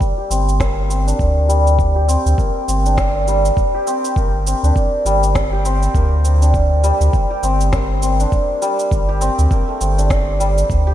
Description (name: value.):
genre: organic downtempo.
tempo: 101 BPM.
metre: 4/4.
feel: swing 59% on 16ths.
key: G minor.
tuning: A4 = 439 Hz.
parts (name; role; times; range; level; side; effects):
santur; arpeggios; 0.0-10.9 s; G3 to G4; -18 LUFS; equal; low-pass filter, diffuse ambient delay.
warm sub bass; bass; 0.0-10.9 s; G1 to D2; -16 LUFS; equal; sidechain pumping.
electronic cabasa and snare drum; drums; 0.0-10.8 s; none; -28 LUFS; right 1 dB; none.
electronic kick drum; drums; 0.0-10.8 s; none; -19 LUFS; equal; none.
room: light reverb.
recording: none.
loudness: -14 LUFS.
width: side -12 dB against mid.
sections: 0.0-10.9 A section.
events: filter sweep on santur 0.0-10.9.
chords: 0.0 Gm.